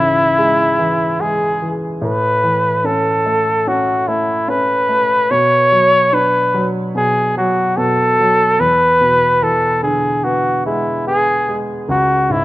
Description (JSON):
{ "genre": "pop", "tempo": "73 BPM", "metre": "4/4", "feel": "straight", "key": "A major", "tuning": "A4 = 441 Hz", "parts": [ { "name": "clear flugelhorn", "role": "melody", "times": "0.0-12.4 s", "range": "E4 to C#5", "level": "-13 LUFS", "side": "equal", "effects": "none" }, { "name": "warm grand piano", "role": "accompaniment", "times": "0.0-12.4 s", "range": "C#2 to D4", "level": "-20 LUFS", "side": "equal", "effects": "none" } ], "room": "light reverb", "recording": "rough home demo mix", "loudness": "-13 LUFS", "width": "side -16 dB against mid", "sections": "0.0-12.4 A section", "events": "none", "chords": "0.0 C#m; 2.0 A; 5.3 Bm; 8.6 E7; 11.9 C#m" }